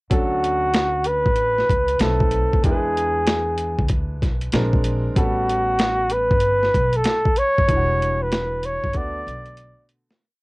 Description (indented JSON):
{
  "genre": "hip hop, jazz-hop",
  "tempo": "95 BPM",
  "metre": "4/4",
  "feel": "swing 65% on 16ths",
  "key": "D major",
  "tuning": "A4 = 440 Hz",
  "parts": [
    { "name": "mellow flugelhorn", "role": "melody", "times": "0.1-9.9 s", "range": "F#4 to D5", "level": "-20 LUFS", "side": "equal", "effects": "cassette tape" },
    { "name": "clear upright piano", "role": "accompaniment", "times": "0.1-10.2 s", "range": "D3 to B4", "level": "-29 LUFS", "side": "equal", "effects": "cassette tape" },
    { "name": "upright bass", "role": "bass", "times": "0.1-9.7 s", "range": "E1 to E2", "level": "-26 LUFS", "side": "equal", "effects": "none" },
    { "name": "boom bap sampler-style drum kit", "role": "drums", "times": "0.1-10.2 s", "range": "hi-hat, kick drum, snare drum", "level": "-21 LUFS", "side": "equal", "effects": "overdrive, cassette tape" }
  ],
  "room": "light reverb",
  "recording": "home recording on cassette",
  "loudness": "-18 LUFS",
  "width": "side -24 dB against mid",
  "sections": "0.1-10.2 A section",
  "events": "fade-out 7.7-10.2; drum fill 8.9-10.2",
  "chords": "0.1 Dmaj7; 2.0 B7b9; 2.6 E7; 4.5 Bb9; 5.2 A9; 7.7 Em9; 8.9 D6"
}